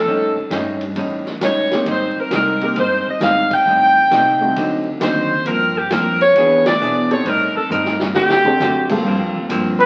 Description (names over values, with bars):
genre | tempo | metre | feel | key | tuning
jazz, big band swing | 134 BPM | 4/4 | swing 67% on 8ths | G minor | A4 = 440 Hz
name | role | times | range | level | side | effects
bright saxophone section | melody | 0.0-8.9 s | G4 to G5 | -18 LUFS | equal | none
upright bass | bass | 0.0-9.9 s | G1 to B2 | -31 LUFS | equal | none
archtop guitar, miked and amplified | accompaniment | 0.1-9.8 s | G2 to G#4 | -24 LUFS | equal | none
swinging big-band drum kit | drums | 0.5-9.9 s | crash cymbal, hi-hat, kick drum, ride cymbal, snare drum, toms | -28 LUFS | equal | none
warm grand piano | accompaniment | 1.7-9.5 s | G2 to A4 | -26 LUFS | equal | none
breathy trumpet | melody | 9.8-9.9 s | B4 | -11 LUFS | equal | none
room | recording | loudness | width
wet large studio reverb, RT60 1.4 s | very old 78 rpm record, vinyl crackle | -17 LUFS | mono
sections
0.0-9.0 A section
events
band accent 3.4, 6.6; drum fill 7.7-8.6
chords
0.1 A7#11; 1.9 Abmaj7; 3.7 Am7b5; 4.6 D7b9; 5.5 Gm7; 6.4 E7; 7.3 Am7b5; 8.1 D7; 9.0 Gm11